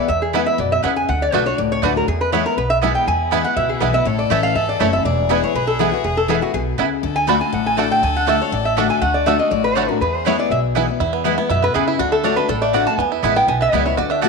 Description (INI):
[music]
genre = bluegrass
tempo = 242 BPM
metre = 4/4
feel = straight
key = E mixolydian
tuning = A4 = 438 Hz
[part]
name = lap resonator guitar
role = melody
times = 0.0-14.3 s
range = E4 to B5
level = -19 LUFS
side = right 1 dB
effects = none
[part]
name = picked steel-string acoustic guitar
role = accompaniment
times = 0.0-14.3 s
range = E2 to F#4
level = -22 LUFS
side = left 12 dB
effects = none
[part]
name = upright bass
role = bass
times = 0.1-14.3 s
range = E1 to F#2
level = -24 LUFS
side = right 1 dB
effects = none
[part]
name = bluegrass banjo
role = arpeggios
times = 0.3-14.3 s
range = E3 to A4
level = -25 LUFS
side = right 12 dB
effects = none
[part]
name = mandolin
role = stabs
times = 0.3-14.3 s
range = A3 to A5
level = -26 LUFS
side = right 12 dB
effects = none
[part]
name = clear fiddle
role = second line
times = 3.1-10.8 s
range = E4 to A4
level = -29 LUFS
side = left 9 dB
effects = none
[sound]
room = moderate echo chamber reverb, RT60 2.0 s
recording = 1960s-style stereo with parts hard left and right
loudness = -15 LUFS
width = side -4 dB against mid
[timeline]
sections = 0.0-11.0 A section; 11.0-14.3 B section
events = resonator guitar played with a steel bar solo 11.0-14.3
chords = 0.0 E; 1.1 D; 2.1 E; 4.1 A; 5.1 E; 7.0 D; 10.0 E; 12.0 D; 13.0 E